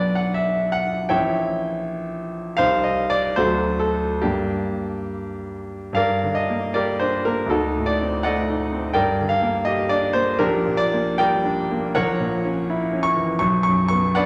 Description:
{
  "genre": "classical, romantic character piece for solo piano",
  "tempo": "68-84 BPM",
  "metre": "2/4",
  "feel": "rubato",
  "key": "G minor",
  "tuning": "A4 = 435 Hz",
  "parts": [
    { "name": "clear concert grand piano", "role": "solo", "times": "0.0-14.3 s", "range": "A#1 to C#6", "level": "-22 LUFS", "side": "equal", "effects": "none" }
  ],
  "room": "wet recital hall reverb, RT60 1.4 s",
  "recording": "none",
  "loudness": "-22 LUFS",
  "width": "mono",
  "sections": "0.0-6.0 A section; 6.0-14.3 B section",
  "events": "none",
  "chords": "0.0 Bm; 1.1 A#dim7; 2.6 Cm; 3.4 D7; 4.2 Gm; 7.5 D7b9; 9.0 Gm; 10.4 Gm/Bb; 11.9 F#7/A#; 13.4 Bm"
}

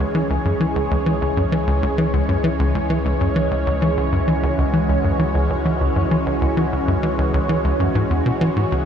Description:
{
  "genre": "ambient, sequencer-driven space music",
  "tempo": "98 BPM",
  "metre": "4/4",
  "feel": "straight",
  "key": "C# minor",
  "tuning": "A4 = 440 Hz",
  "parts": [
    { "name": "lush unison pad", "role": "sustained chords", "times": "0.0-8.9 s", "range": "E3 to C#5", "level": "-21 LUFS", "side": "equal", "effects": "chorus, phaser, shimmer reverb" },
    { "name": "tight sequencer bass", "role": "riff", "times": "0.0-8.9 s", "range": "C#2 to E3", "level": "-20 LUFS", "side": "equal", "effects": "ping-pong delay" },
    { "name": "warm sub bass", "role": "bass", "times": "0.0-8.8 s", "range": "C#2", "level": "-27 LUFS", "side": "equal", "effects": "none" }
  ],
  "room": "wet huge ambient reverb, RT60 7.9 s",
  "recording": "dark, warm production",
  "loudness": "-17 LUFS",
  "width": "side -8 dB against mid",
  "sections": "0.0-8.9 A section",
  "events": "none",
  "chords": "0.0 C#m"
}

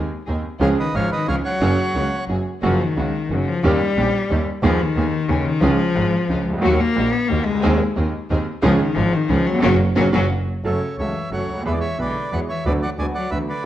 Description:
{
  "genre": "tango",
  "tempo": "180 BPM",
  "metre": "3/4",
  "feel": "rubato",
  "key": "F# major, F# minor from 10.6 s",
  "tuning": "A4 = 440 Hz",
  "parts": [
    { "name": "bright concert grand piano", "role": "accompaniment", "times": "0.0-13.5 s", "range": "G#1 to A4", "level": "-22 LUFS", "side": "right 2 dB", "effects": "none" },
    { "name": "rich studio string section", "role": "stabs", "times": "0.0-10.2 s", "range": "G#3 to G#4", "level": "-29 LUFS", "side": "right 2 dB", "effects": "none" },
    { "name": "clear double bass", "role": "bass", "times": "0.0-13.5 s", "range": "F#1 to E2", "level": "-22 LUFS", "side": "right 1 dB", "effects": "none" },
    { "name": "bandoneon", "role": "melody", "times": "0.6-2.3, 10.6-13.6 s", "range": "A4 to G#5", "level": "-26 LUFS", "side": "right 2 dB", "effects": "none" },
    { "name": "bright cello", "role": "second line", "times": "0.6-13.6 s", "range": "C#3 to B3", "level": "-22 LUFS", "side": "left 4 dB", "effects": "none" }
  ],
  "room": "moderate large studio reverb, RT60 1.2 s",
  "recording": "worn, warbling old tape, cassette tape, warbly pitch drift",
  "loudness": "-17 LUFS",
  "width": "side -12 dB against mid",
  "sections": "0.0-2.6 A section; 2.6-10.6 A section; 10.6-13.7 B section",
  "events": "cello solo 2.6-10.6; band accent 9.6-10.6",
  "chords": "0.0 G#/D#; 0.6 C#; 1.6 F#add9; 2.6 F#; 3.6 D#7; 4.6 G#madd9/D#; 5.6 C#; 6.6 D#m; 7.6 G#/D#; 8.6 C#; 9.6 F#; 10.6 F#m; 11.7 E; 12.7 Bm/D"
}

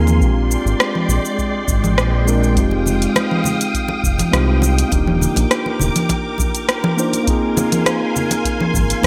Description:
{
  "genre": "sunset chillout",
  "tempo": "102 BPM",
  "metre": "4/4",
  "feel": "straight",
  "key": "F dorian",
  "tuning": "A4 = 440 Hz",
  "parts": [
    { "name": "mellow tine electric piano", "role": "accompaniment", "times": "0.0-9.1 s", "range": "Ab3 to C5", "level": "-23 LUFS", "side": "equal", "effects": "delay" },
    { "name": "soft string machine", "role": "sustained chords", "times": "0.0-9.1 s", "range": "Ab3 to Eb6", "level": "-26 LUFS", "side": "equal", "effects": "ensemble chorus" },
    { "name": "round analog bass", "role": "bass", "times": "0.0-9.1 s", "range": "Eb1 to Eb2", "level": "-20 LUFS", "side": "equal", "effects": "none" },
    { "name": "deep house drum kit", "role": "drums", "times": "0.1-9.1 s", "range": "congas, hi-hat, rim click, shaker", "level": "-22 LUFS", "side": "equal", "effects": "overdrive, small room ambience, gated reverb" },
    { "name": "electronic kick drum", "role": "drums", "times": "0.2-8.9 s", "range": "none", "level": "-24 LUFS", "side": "equal", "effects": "small room ambience" },
    { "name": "congas", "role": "percussion", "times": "2.7-9.1 s", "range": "none", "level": "-28 LUFS", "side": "equal", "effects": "none" }
  ],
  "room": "moderate lush hall reverb, RT60 2.6 s",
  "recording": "bright 1980s-style digital production",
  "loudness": "-17 LUFS",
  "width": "mono",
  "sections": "0.0-9.1 A section",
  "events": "none",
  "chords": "0.2 Bb13; 2.6 Fm9; 4.9 Ebmaj7; 7.3 Ab69"
}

